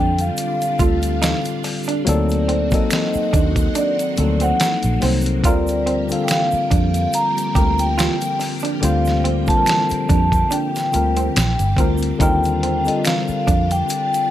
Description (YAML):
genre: R&B, neo-soul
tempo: 71 BPM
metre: 4/4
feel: swing 56% on 16ths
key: G minor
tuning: A4 = 439 Hz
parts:
  - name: vibraphone with soft mallets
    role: melody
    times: 0.0-14.3 s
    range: D5 to Bb5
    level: -22 LUFS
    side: equal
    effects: none
  - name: electric guitar through a small old amp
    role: second line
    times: 0.0-13.7 s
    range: C4 to G4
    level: -26 LUFS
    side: right 6 dB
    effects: none
  - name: tine electric piano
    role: accompaniment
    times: 0.0-14.3 s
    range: D3 to C5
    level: -23 LUFS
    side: left 4 dB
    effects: none
  - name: phased string machine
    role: sustained chords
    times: 0.0-14.3 s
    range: D3 to G4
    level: -29 LUFS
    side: equal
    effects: ensemble chorus, phaser
  - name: vintage muted fingered electric bass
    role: bass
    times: 0.0-13.8 s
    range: G1 to F2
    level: -20 LUFS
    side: right 1 dB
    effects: none
  - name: dusty soul sampler-style drum kit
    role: drums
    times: 0.2-14.3 s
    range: hi-hat, kick drum, snare drum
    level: -21 LUFS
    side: right 1 dB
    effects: none
  - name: egg shaker and finger snaps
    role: percussion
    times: 0.2-14.3 s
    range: none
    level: -32 LUFS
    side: right 6 dB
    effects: none
room: digital ambience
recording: none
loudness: -16 LUFS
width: side -12 dB against mid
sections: 0.0-14.3 A section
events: none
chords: 0.0 Ebmaj9 (rootless); 2.1 D7b9b13; 5.4 Gm9/D; 11.4 Bb69; 12.2 Ebmaj9